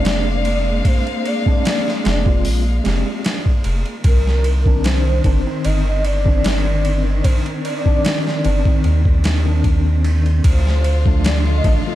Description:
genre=trip hop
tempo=75 BPM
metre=4/4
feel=swing 53% on 16ths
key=C minor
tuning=A4 = 441 Hz
part: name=pure breathy sine lead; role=melody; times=0.0-11.9 s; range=Bb4 to Eb5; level=-25 LUFS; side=left 1 dB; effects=ensemble chorus, tape echo
part: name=mellow tine electric piano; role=accompaniment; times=0.0-11.9 s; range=Eb3 to G4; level=-24 LUFS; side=left 1 dB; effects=overdrive, medium stereo tremolo, tape echo
part: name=rich chamber string section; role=sustained chords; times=0.0-11.9 s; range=D3 to F5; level=-27 LUFS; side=left 1 dB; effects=vintage 12-bit sampler grit
part: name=soft dub sub bass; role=bass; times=0.0-11.8 s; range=F1 to Eb2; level=-17 LUFS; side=equal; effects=none
part: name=boom bap sampler-style drum kit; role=drums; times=0.1-11.8 s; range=hi-hat, kick drum, ride cymbal, snare drum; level=-19 LUFS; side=equal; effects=none
room=digital ambience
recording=dark, warm production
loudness=-14 LUFS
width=side -14 dB against mid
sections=0.0-11.9 A section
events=none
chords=0.0 Bb7; 4.0 Cmadd9; 10.4 Dm

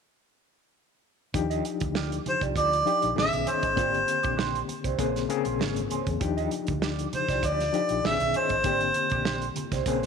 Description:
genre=lush 1970s-style soul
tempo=98 BPM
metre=4/4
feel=swing 54% on 16ths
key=Eb major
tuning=A4 = 444 Hz
part: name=overdriven reed electric piano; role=accompaniment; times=1.3-10.1 s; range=Db3 to G#4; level=-30 LUFS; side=left 10 dB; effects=fast tremolo
part: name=electric guitar through a small old amp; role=riff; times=1.3-10.1 s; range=Db4 to Eb5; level=-34 LUFS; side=right 12 dB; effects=wah
part: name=hollow-body short-scale fingered electric bass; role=bass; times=1.3-10.1 s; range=Ab1 to Fb2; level=-33 LUFS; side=equal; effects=none
part: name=warm soul drum kit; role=drums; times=1.3-10.1 s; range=hi-hat, kick drum, snare drum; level=-33 LUFS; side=right 4 dB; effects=none
part: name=congas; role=percussion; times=1.8-10.0 s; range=none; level=-41 LUFS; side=right 9 dB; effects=none
part: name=mellow harmonica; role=melody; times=2.3-9.5 s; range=C5 to E5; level=-26 LUFS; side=equal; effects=none
room=light reverb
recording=1960s-style stereo with parts hard left and right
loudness=-24 LUFS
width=side -6 dB against mid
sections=1.3-10.1 A section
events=none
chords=1.3 Ebmaj9; 3.2 Amaj9#11; 3.8 Abmaj9#11; 5.0 Bbm9; 6.2 Ebmaj9; 8.0 Amaj9#11; 8.6 Abmaj9#11

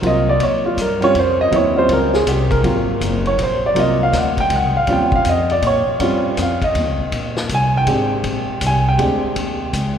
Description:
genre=jazz piano trio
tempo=161 BPM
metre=3/4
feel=swing 65% on 8ths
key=Eb mixolydian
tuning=A4 = 440 Hz
part: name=warm grand piano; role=melody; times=0.0-9.4 s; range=Gb3 to Ab5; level=-16 LUFS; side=right 1 dB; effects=none
part: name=upright bass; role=bass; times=0.0-10.0 s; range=Gb1 to Bb2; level=-21 LUFS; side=equal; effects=none
part: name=vintage drum kit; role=drums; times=0.0-9.8 s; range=hi-hat, kick drum, ride cymbal, snare drum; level=-25 LUFS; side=left 2 dB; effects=none
room=wet church reverb, RT60 3.4 s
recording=recorded in a church or concert hall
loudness=-14 LUFS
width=side -8 dB against mid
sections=0.0-10.0 A section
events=grand piano solo 0.0-10.0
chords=0.4 Eb13; 2.6 Ab13; 4.9 Eb13; 7.1 Bb13; 9.4 Eb7(no3)

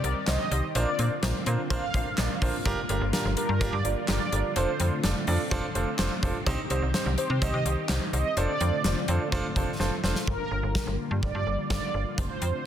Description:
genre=synth-pop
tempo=126 BPM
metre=4/4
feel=straight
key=unclear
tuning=A4 = 442 Hz
part: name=mellow synth brass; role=melody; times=0.0-12.7 s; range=Bb4 to F5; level=-32 LUFS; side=right 1 dB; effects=chorus, digital delay
part: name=warm grand piano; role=accompaniment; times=0.0-10.2 s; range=C4 to D5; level=-32 LUFS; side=right 3 dB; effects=none
part: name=string machine, cellos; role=sustained chords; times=0.0-12.7 s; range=D3 to G4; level=-34 LUFS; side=left 1 dB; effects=ensemble chorus
part: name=slap-like FM bass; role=bass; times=0.0-12.5 s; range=F1 to C3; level=-28 LUFS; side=equal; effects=none
part: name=gated 80s drum kit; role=drums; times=0.0-12.5 s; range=handclaps, hi-hat, kick drum, snare drum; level=-30 LUFS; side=left 1 dB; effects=none
room=light reverb, small room ambience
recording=dense, heavily limited modern master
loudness=-25 LUFS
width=side -10 dB against mid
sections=0.0-10.3 A section; 10.3-12.7 B section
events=drum fill 9.8-10.3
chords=0.0 Cm; 0.8 Bbadd9; 2.7 Gm7; 4.6 F6; 6.5 Cm; 8.4 F6; 10.3 Gm7

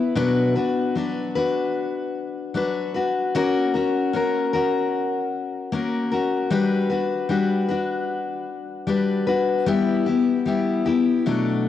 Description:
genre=pop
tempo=76 BPM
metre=4/4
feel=straight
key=B minor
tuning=A4 = 440 Hz
part: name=picked steel-string acoustic guitar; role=solo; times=0.0-11.7 s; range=B2 to B4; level=-20 LUFS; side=left 3 dB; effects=none
room=wet lush hall reverb, RT60 2.8 s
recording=home recording on cassette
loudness=-20 LUFS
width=side -11 dB against mid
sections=0.0-11.7 A section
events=none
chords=0.2 Bm; 3.3 F#/A#; 6.5 Gmaj7; 9.7 Em/G

